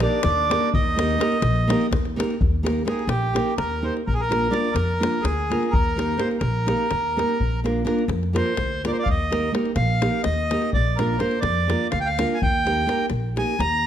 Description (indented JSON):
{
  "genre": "balkan folk, Balkan wedding band",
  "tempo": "251 BPM (eighths)",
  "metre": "7/8",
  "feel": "straight",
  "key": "Eb major",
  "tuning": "A4 = 440 Hz",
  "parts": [
    { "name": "accordion", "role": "melody", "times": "0.0-13.9 s", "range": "G4 to Bb5", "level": "-24 LUFS", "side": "right 1 dB", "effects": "none" },
    { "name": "dark trumpet", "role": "second line", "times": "0.0-1.9 s", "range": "D4 to Eb4", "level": "-32 LUFS", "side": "left 5 dB", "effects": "none" },
    { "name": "nylon-string guitar", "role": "accompaniment", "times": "0.0-13.5 s", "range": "Bb3 to Bb4", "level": "-25 LUFS", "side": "right 1 dB", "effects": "none" },
    { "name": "upright bass", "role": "bass", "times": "0.0-13.9 s", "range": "Bb1 to F2", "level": "-25 LUFS", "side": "equal", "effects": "none" },
    { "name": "davul", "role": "percussion", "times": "0.0-13.7 s", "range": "none", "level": "-28 LUFS", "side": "left 2 dB", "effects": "none" }
  ],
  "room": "moderate recital hall reverb, RT60 1.5 s",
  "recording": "close, detailed microphones",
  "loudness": "-20 LUFS",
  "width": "side -10 dB against mid",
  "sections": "0.0-2.4 A section; 2.4-13.9 B section",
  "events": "accordion solo 2.4-13.9",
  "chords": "0.0 Eb; 4.1 Bb; 5.7 Eb; 7.4 Bb; 9.1 Eb; 10.7 Bb; 12.4 Eb"
}